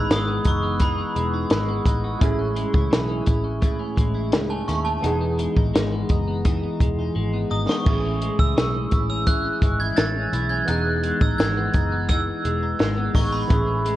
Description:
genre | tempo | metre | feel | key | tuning
indie pop, bedroom pop | 85 BPM | 4/4 | straight | E major | A4 = 440 Hz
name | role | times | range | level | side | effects
clean electric guitar | accompaniment | 0.0-14.0 s | A2 to E4 | -28 LUFS | left 3 dB | analog chorus, warbly pitch drift
warm analog keys | accompaniment | 0.0-14.0 s | E3 to G#4 | -29 LUFS | right 3 dB | chorus, cassette tape
vintage muted picked electric bass | bass | 0.0-13.9 s | E1 to D#2 | -26 LUFS | equal | none
glockenspiel with hard plastic mallets | melody | 0.1-1.8, 7.5-14.0 s | B5 to A6 | -27 LUFS | right 2 dB | analog chorus, slapback echo
compact cocktail drum kit | drums | 0.1-14.0 s | crash cymbal, hi-hat, kick drum, snare drum | -22 LUFS | equal | none
synth chime | second line | 4.5-5.2 s | A5 to C#6 | -28 LUFS | right 2 dB | ensemble chorus, phaser, tremolo, wide subtle chorus, slapback echo
room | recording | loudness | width
light reverb, studio reverb | worn, warbling old tape, cassette tape, warbly pitch drift | -19 LUFS | side -14 dB against mid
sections
0.0-14.0 A section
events
drum fill 7.2-7.9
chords
0.0 Emaj7; 2.2 Amaj7; 5.0 Emaj7; 7.9 Amaj7; 10.7 Emaj7

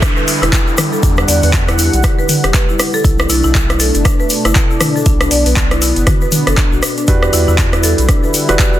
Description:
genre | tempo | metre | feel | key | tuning
afro house | 119 BPM | 4/4 | swing 59% on 16ths | E minor | A4 = 440 Hz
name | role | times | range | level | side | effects
warm analog pad | sustained chords | 0.0-8.8 s | B2 to F#5 | -21 LUFS | left 1 dB | chorus, sidechain pumping
marimba with medium mallets | arpeggios | 0.0-8.8 s | D4 to D5 | -19 LUFS | equal | sidechain pumping, dub echo
afro-pop drum kit | drums | 0.0-8.7 s | handclaps, hi-hat, rim click, toms | -16 LUFS | equal | overdrive
electronic kick drum | drums | 0.0-8.7 s | none | -14 LUFS | equal | overdrive
egg shaker | percussion | 0.0-8.8 s | none | -24 LUFS | left 4 dB | none
downlifter | sound effects | 0.0-3.0 s | none | -24 LUFS | equal | none
round analog bass | bass | 0.4-8.6 s | E1 to E2 | -16 LUFS | equal | sidechain pumping
felt-muted upright piano | stabs | 7.1-8.8 s | D4 to B4 | -18 LUFS | right 3 dB | sidechain pumping, dub echo
room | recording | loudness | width
light reverb, digital ambience | dense, heavily limited modern master | -10 LUFS | side -13 dB against mid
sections
0.0-8.8 A section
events
none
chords
0.0 Em7; 3.0 Bm7; 7.1 Em7

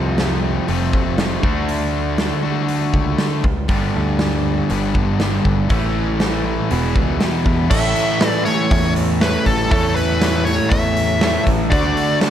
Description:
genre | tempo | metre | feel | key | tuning
classic rock | 120 BPM | 4/4 | straight | A major | A4 = 441 Hz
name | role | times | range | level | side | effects
distorted electric guitar | riff | 0.0-12.3 s | E2 to A4 | -22 LUFS | left 8 dB | distortion
overdriven semi-hollow guitar | riff | 0.0-12.3 s | E2 to D4 | -22 LUFS | right 8 dB | none
picked electric bass | bass | 0.0-11.9 s | E1 to E2 | -22 LUFS | equal | none
big rock drum kit | drums | 0.2-12.3 s | crash cymbal, hi-hat, kick drum, snare drum | -20 LUFS | equal | none
nasal lead guitar with a parked wah | melody | 7.7-12.2 s | A4 to E5 | -21 LUFS | left 2 dB | overdrive
clear concert grand piano | accompaniment | 7.7-12.3 s | E4 to D5 | -27 LUFS | right 4 dB | none
room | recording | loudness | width
light reverb | none | -15 LUFS | side -10 dB against mid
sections
0.0-7.7 A section; 7.7-12.3 B section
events
none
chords
0.0 F; 1.4 D; 3.7 G; 5.7 A; 6.7 E; 7.7 A; 11.7 D

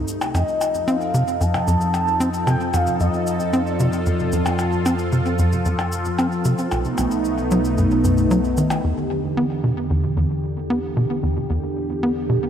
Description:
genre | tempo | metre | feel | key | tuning
ambient, sequencer-driven space music | 113 BPM | 4/4 | straight | unclear | A4 = 443 Hz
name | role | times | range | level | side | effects
phased analog pad | sustained chords | 0.0-12.5 s | E2 to A4 | -23 LUFS | equal | phaser, chorus
tight sequencer bass | riff | 0.0-12.4 s | B1 to C4 | -22 LUFS | equal | tape echo
analog drone | bass | 1.1-8.8 s | B1 to F2 | -26 LUFS | equal | chorus
shaker and percussion blips | percussion | 0.1-8.8 s | none | -30 LUFS | left 2 dB | tape echo
expressive portamento lead | melody | 0.4-4.0 s | Eb5 to A5 | -24 LUFS | equal | wide subtle chorus, tape echo
room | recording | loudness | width
wet lush hall reverb, RT60 2.9 s | none | -18 LUFS | side -9 dB against mid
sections
0.0-8.8 A section; 8.8-12.5 B section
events
fade-in on analog synth pad 0.0-8.8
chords
0.3 F7; 6.7 B7; 8.8 Em7

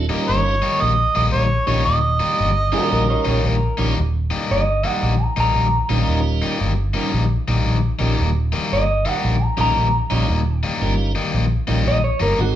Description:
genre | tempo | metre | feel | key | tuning
blues | 114 BPM | 4/4 | swing 65% on 8ths | Eb mixolydian | A4 = 439 Hz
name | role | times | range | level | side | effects
tonewheel organ | accompaniment | 0.0-12.6 s | G3 to Db5 | -26 LUFS | right 4 dB | slow rotary speaker, overdrive
vintage muted fingered electric bass | bass | 0.0-12.6 s | Eb1 to Bb1 | -20 LUFS | equal | none
cranked stack guitar | riff | 0.1-12.4 s | Eb3 to Eb4 | -23 LUFS | left 3 dB | overdrive
overdriven harmonica | melody | 0.3-3.4 s | Db5 to Eb5 | -20 LUFS | right 2 dB | none
electric guitar through a small old amp | second line | 2.7-12.6 s | Gb4 to Bb5 | -22 LUFS | equal | none
room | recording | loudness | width
moderate large studio reverb, RT60 0.8 s | band playing live in one room, nothing above 10.3 kHz | -16 LUFS | side -11 dB against mid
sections
0.0-4.0 A section; 4.0-12.6 B section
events
clean electric guitar solo 4.0-12.6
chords
0.0 Eb7

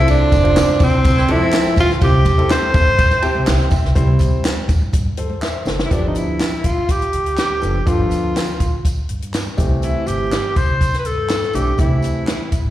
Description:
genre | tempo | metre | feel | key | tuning
uptempo 1960s-style soul | 123 BPM | 4/4 | straight | C major | A4 = 440 Hz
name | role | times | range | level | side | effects
breathy tenor saxophone | melody | 0.0-12.7 s | C4 to C5 | -18 LUFS | right 1 dB | slapback echo
warm upright piano | accompaniment | 0.0-12.3 s | E3 to A5 | -23 LUFS | left 2 dB | slapback echo
mellow tonewheel organ | sustained chords | 0.0-3.9 s | C5 to C6 | -32 LUFS | right 2 dB | none
upright bass | bass | 0.0-12.7 s | F1 to A2 | -20 LUFS | equal | none
compact cocktail drum kit | drums | 0.1-12.6 s | hi-hat, kick drum, ride cymbal, snare drum | -18 LUFS | equal | none
tambourine and handclaps | percussion | 0.1-12.6 s | none | -31 LUFS | right 2 dB | slapback echo
congas | percussion | 0.2-5.8 s | none | -31 LUFS | right 2 dB | slapback echo
electric guitar through a small old amp | riff | 1.2-2.0 s | E3 to E4 | -26 LUFS | left 6 dB | slapback echo
room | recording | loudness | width
light reverb | live gig heard through the venue's PA, recital hall reverb, vinyl crackle | -14 LUFS | side -13 dB against mid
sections
0.0-4.0 A section; 4.0-5.9 B section; 5.9-12.7 C section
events
upright piano fill 3.0-4.0; drum fill 5.4-5.9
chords
0.0 F; 2.0 C; 5.9 G7; 9.6 C6

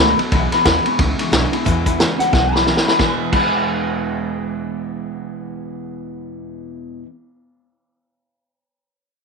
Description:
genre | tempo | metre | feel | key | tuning
rockabilly | 180 BPM | 4/4 | swing 60% on 8ths | E major | A4 = 442 Hz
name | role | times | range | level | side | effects
electric guitar through a small old amp | melody | 0.0-7.0 s | F#5 to B5 | -19 LUFS | left 3 dB | tape echo
clear upright piano | accompaniment | 0.0-7.0 s | D#5 to C#6 | -30 LUFS | left 12 dB | none
picked steel-string acoustic guitar | accompaniment | 0.0-7.1 s | E2 to F#4 | -26 LUFS | left 11 dB | none
electric guitar through a small old amp | riff | 0.0-7.1 s | E2 to G#4 | -24 LUFS | right 14 dB | none
upright bass | bass | 0.0-7.0 s | B1 to E2 | -24 LUFS | equal | none
vintage drum kit | drums | 0.2-3.4 s | crash cymbal, hi-hat, kick drum, ride cymbal, snare drum | -18 LUFS | equal | none
room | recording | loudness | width
light reverb, small room ambience | 1960s-style stereo with parts hard left and right | -15 LUFS | side -4 dB against mid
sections
0.0-1.7 A section; 1.7-3.0 B section; 3.0-5.7 C section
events
drum fill 2.3-3.0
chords
0.3 E

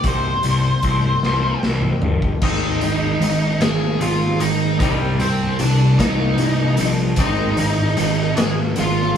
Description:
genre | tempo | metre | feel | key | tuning
quiet-loud alternative rock | 50 BPM (dotted quarters) | 6/8 | straight | unclear | A4 = 440 Hz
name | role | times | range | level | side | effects
octave-fuzz lead guitar | melody | 0.0-9.2 s | C4 to Ab5 | -22 LUFS | left 1 dB | distortion
twangy electric guitar | arpeggios | 0.0-9.1 s | C3 to Eb4 | -28 LUFS | left 7 dB | none
fuzz picked electric bass | bass | 0.0-9.1 s | G1 to C2 | -21 LUFS | equal | overdrive
raw garage drum kit | drums | 0.0-8.9 s | crash cymbal, hi-hat, kick drum, snare drum, toms | -22 LUFS | equal | none
thick fuzz guitar | riff | 2.4-9.2 s | Ab2 to C4 | -21 LUFS | right 2 dB | distortion
room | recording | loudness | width
moderate stone room reverb, RT60 1.2 s | band playing live in one room, studio ambience | -16 LUFS | side -8 dB against mid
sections
0.0-2.4 A section; 2.4-9.2 B section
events
drum fill 1.2-2.4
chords
0.0 Cm; 2.4 Ab; 4.8 Cmadd9; 7.2 Ab

